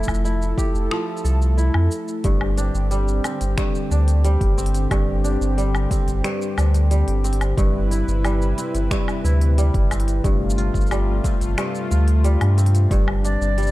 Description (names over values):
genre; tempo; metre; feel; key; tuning
folktronica; 90 BPM; 4/4; straight; G mixolydian; A4 = 440 Hz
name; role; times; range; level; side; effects
warm analog pad; sustained chords; 0.0-13.7 s; C3 to B4; -27 LUFS; left 1 dB; chorus, tremolo
kora; arpeggios; 0.0-13.7 s; G2 to A4; -26 LUFS; equal; tape echo
warm sub bass; bass; 0.0-13.7 s; F1 to G2; -18 LUFS; equal; none
organic electronic drum kit; drums; 0.0-13.7 s; finger snaps, hi-hat, shaker, woodblock; -31 LUFS; left 1 dB; none
electronic kick drum; drums; 0.1-13.0 s; none; -22 LUFS; equal; none
breathy bright concert flute; melody; 13.2-13.7 s; D5; -25 LUFS; left 2 dB; none
room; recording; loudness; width
little or no reverb; dark, warm production; -17 LUFS; side -17 dB against mid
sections
0.0-2.2 A section; 2.2-13.7 B section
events
none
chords
0.0 Fmaj9; 2.2 Gsus4; 7.6 Cmaj7/G; 10.2 F/G; 12.9 Gsus4